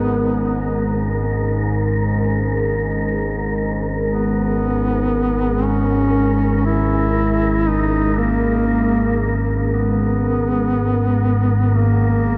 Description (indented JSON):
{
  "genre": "dark ambient drone",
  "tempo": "free time",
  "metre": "none",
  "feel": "none",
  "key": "G# minor",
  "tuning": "A4 = 440 Hz",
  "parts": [
    { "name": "mellow duduk", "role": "melody", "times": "0.0-12.4 s", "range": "A#3 to E4", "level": "-23 LUFS", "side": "equal", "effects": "delay" },
    { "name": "deep dark ambient pad", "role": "sustained chords", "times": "0.0-12.4 s", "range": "G#3 to A#4", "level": "-26 LUFS", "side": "equal", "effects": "chorus, built-in reverb" },
    { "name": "analog drone", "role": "drone", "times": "0.0-12.4 s", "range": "G#1 to G#2", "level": "-22 LUFS", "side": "equal", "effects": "chorus" },
    { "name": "wind-like tuned noise texture", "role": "texture", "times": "0.0-12.4 s", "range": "A#4", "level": "-29 LUFS", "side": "equal", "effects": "built-in reverb" }
  ],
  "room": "wet huge ambient reverb, RT60 7.9 s",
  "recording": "none",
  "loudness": "-18 LUFS",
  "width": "mono",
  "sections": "0.0-12.4 A section",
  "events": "none",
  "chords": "0.0 G#madd9"
}